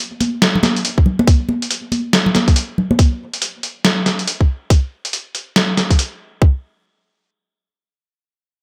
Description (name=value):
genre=deep dubstep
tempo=140 BPM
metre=4/4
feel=swing 61% on 16ths, half-time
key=none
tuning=none
part: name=trip hop sampler-style drum kit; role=drums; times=0.2-6.1 s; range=hi-hat, snare drum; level=-18 LUFS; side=equal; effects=none
part: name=congas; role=percussion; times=0.2-3.0 s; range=none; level=-21 LUFS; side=equal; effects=none
part: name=electronic kick drum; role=drums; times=1.0-6.5 s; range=none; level=-14 LUFS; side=equal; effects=none
room=little or no reverb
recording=none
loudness=-17 LUFS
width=mono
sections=0.0-6.4 A section; 6.4-8.6 B section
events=none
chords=none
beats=0.42 0.84 | 1.27 1.70 2.13 2.56 | 2.99 3.42 3.85 4.27 | 4.70 5.13 5.56 5.99 | 6.42